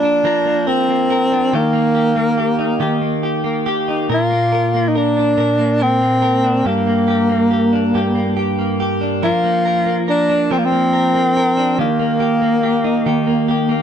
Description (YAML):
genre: pop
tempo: 47 BPM (dotted quarters)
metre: 6/8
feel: straight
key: Bb major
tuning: A4 = 437 Hz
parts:
  - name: breathy tenor saxophone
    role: melody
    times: 0.0-13.8 s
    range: Bb3 to F4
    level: -16 LUFS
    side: equal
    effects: none
  - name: direct-recorded clean electric guitar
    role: accompaniment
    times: 0.0-13.8 s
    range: G2 to Bb4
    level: -18 LUFS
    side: equal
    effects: double-tracked left and right
room: light reverb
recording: dry, close 1970s-style studio recording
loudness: -14 LUFS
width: side -8 dB against mid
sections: 0.0-13.8 A section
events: none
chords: 0.0 Bb/F; 1.5 Eb; 4.1 Bb; 6.7 Gm; 9.2 Bb; 11.8 Eb